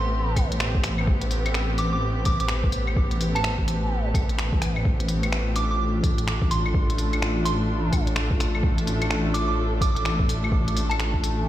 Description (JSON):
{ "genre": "future garage", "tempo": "127 BPM", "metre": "4/4", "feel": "swing 62% on 16ths", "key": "unclear", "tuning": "A4 = 440 Hz", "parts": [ { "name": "soft synth bell", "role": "melody", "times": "0.0-11.5 s", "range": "A5 to D6", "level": "-31 LUFS", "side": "right 2 dB", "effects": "chorus, digital delay" }, { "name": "clear symphonic string section", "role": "sustained chords", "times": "0.0-11.5 s", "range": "A2 to A4", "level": "-29 LUFS", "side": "left 1 dB", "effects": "sidechain pumping" }, { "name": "dark detuned saw bass", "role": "bass", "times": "0.0-11.5 s", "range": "A1", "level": "-25 LUFS", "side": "equal", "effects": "tube saturation, sidechain pumping" }, { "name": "electronic kick drum", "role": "drums", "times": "0.4-11.2 s", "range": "none", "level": "-23 LUFS", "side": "equal", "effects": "studio reverb" }, { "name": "organic electronic drum kit", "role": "drums", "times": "0.4-11.4 s", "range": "claves, finger snaps, hi-hat", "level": "-30 LUFS", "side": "left 2 dB", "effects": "studio reverb" } ], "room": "light reverb", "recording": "played on a big sound system in a bare room, stone room reverb", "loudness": "-21 LUFS", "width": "side -13 dB against mid", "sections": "0.0-11.5 A section", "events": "none", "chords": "0.0 Am7; 4.9 Dm/A", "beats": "0.13 0.60 | 1.08 1.55 2.02 2.49 | 2.97 3.44 3.91 4.38 | 4.86 5.33 5.80 6.27 | 6.75 7.22 7.69 8.16 | 8.63 9.11 9.58 10.05 | 10.53 11.00 11.47" }